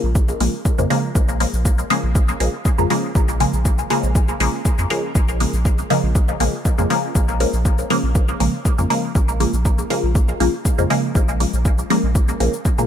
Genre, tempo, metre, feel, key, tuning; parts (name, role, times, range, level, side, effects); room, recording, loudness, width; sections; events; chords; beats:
dub techno; 120 BPM; 4/4; straight; Bb minor; A4 = 440 Hz
filtered dub chord stab; stabs; 0.0-12.9 s; Db3 to Bb3; -20 LUFS; equal; phaser, sidechain pumping, dub echo
warm sub bass; bass; 0.0-12.9 s; Bb1 to Bb2; -21 LUFS; equal; sidechain pumping
electronic kick drum; drums; 0.2-12.8 s; -18 LUFS; equal
electronic shaker and hi-hat; drums; 0.2-12.9 s; -30 LUFS; left 4 dB
digital ambience; -16 LUFS; side -9 dB against mid
0.0-12.9 A section
0.0 Bbm7
0.15 0.65 | 1.15 1.65 2.15 2.65 | 3.15 3.65 4.15 4.65 | 5.15 5.65 6.15 6.65 | 7.15 7.65 8.15 8.65 | 9.15 9.65 10.15 10.65 | 11.15 11.65 12.15 12.65